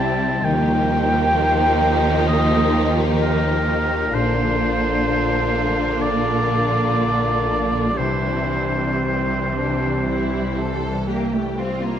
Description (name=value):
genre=cinematic, emotional film score for orchestra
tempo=57-66 BPM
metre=4/4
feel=rubato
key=unclear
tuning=A4 = 440 Hz
part: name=clear oboe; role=second line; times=0.0-11.1 s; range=Bb4 to A5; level=-22 LUFS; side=right 1 dB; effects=none
part: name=warm studio violin section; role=second line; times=0.0-12.0 s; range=C4 to A4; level=-25 LUFS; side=left 4 dB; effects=none
part: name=warm studio viola section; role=accompaniment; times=0.0-11.8 s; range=D3 to C4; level=-24 LUFS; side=right 2 dB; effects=none
part: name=concert harp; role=arpeggios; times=0.0-12.0 s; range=Bb2 to C5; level=-27 LUFS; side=left 7 dB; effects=none
part: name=rich studio cello section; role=bass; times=0.0-12.0 s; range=Bb2 to C4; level=-28 LUFS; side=right 2 dB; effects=none
part: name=rich studio double bass section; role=bass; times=0.0-11.9 s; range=Bb1 to Eb2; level=-26 LUFS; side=right 2 dB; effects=none
room=wet recital hall reverb, RT60 1.3 s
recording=none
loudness=-17 LUFS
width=side -9 dB against mid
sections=0.0-12.0 A section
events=none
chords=0.5 Ebadd9; 4.1 Bb; 8.0 Cadd9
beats=| 0.45 1.36 2.28 3.21 | 4.14 5.07 6.00 6.97 | 7.99 9.04 10.07 11.07